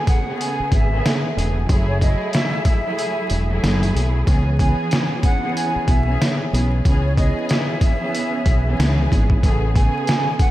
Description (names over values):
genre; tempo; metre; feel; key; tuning
hip hop, boom-bap hip-hop; 93 BPM; 4/4; swing 60% on 16ths; C# minor; A4 = 441 Hz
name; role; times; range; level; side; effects
breathy reedy jazz flute; melody; 0.0-10.5 s; C#5 to G#5; -26 LUFS; right 1 dB; ping-pong delay
muted studio string section; accompaniment; 0.0-10.5 s; C#3 to G#4; -24 LUFS; equal; none
trip hop sampler-style drum kit; drums; 0.1-10.5 s; hi-hat, kick drum, snare drum; -19 LUFS; equal; none
deep dub fingered electric bass; bass; 0.6-9.9 s; E1 to C#2; -19 LUFS; equal; none
room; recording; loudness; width
moderate lush hall reverb, RT60 2.6 s; dreamy mix soaked in reverb, vinyl crackle; -16 LUFS; side -15 dB against mid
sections
0.0-10.5 A section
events
kick muted 3.0-4.3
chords
0.0 Amaj9; 1.7 F#m9; 4.3 C#m7; 9.4 Amaj9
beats
0.40 1.05 | 1.69 2.34 2.98 3.63 | 4.27 4.92 5.56 6.21 | 6.85 7.50 8.14 8.79 | 9.43 10.08